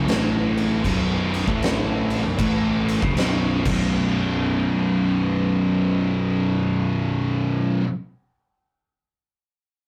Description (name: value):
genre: stoner and doom metal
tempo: 78 BPM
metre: 4/4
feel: swing 63% on 8ths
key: unclear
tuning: A4 = 440 Hz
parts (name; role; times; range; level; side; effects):
- distorted electric guitar; riff; 0.0-7.9 s; B1 to A3; -29 LUFS; equal; distortion
- thick fuzz guitar; riff; 0.0-7.9 s; B1 to A3; -28 LUFS; equal; distortion
- thick fuzz guitar; riff; 0.0-7.8 s; B1 to A3; -27 LUFS; equal; distortion
- fuzz picked electric bass; bass; 0.0-7.8 s; B0 to A1; -32 LUFS; equal; overdrive
- oversized low-tuned drum kit; drums; 0.1-3.8 s; crash cymbal, kick drum, snare drum; -28 LUFS; equal; none
room: moderate studio ambience, RT60 0.5 s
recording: rough rehearsal-room recording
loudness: -22 LUFS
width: mono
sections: 0.0-3.9 A section; 3.9-7.0 B section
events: drum fill 3.6-3.9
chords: 0.1 A5; 0.8 B5; 1.4 A5; 2.2 B5